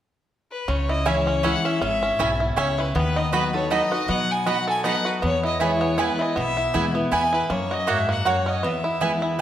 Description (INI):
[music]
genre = bluegrass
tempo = 158 BPM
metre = 3/4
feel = swing 55% on 8ths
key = E major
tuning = A4 = 440 Hz
[part]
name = clear fiddle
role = melody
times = 0.5-9.4 s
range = B4 to G#5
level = -25 LUFS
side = left 2 dB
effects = none
[part]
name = bluegrass banjo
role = melody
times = 0.7-9.4 s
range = A#3 to A4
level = -27 LUFS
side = right 2 dB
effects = none
[part]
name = picked steel-string acoustic guitar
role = accompaniment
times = 0.7-9.4 s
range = E2 to B4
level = -26 LUFS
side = left 2 dB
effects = none
[part]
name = upright bass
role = bass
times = 0.7-8.3 s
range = G#1 to B2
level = -30 LUFS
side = equal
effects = none
[part]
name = mandolin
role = stabs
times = 1.1-9.4 s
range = A#3 to B5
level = -26 LUFS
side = right 5 dB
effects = none
[sound]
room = wet recital hall reverb, RT60 1.5 s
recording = none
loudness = -20 LUFS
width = side -11 dB against mid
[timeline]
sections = 0.7-9.4 A section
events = none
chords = 0.0 N.C.; 0.7 C#m; 3.0 B/D#; 5.2 E; 7.5 F#; 8.6 E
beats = 0.30 | 0.68 1.06 1.44 | 1.82 2.20 2.58 | 2.96 3.33 3.71 | 4.09 4.47 4.85 | 5.23 5.61 5.99 | 6.36 6.74 7.12 | 7.50 7.88 8.26 | 8.63 9.01 9.39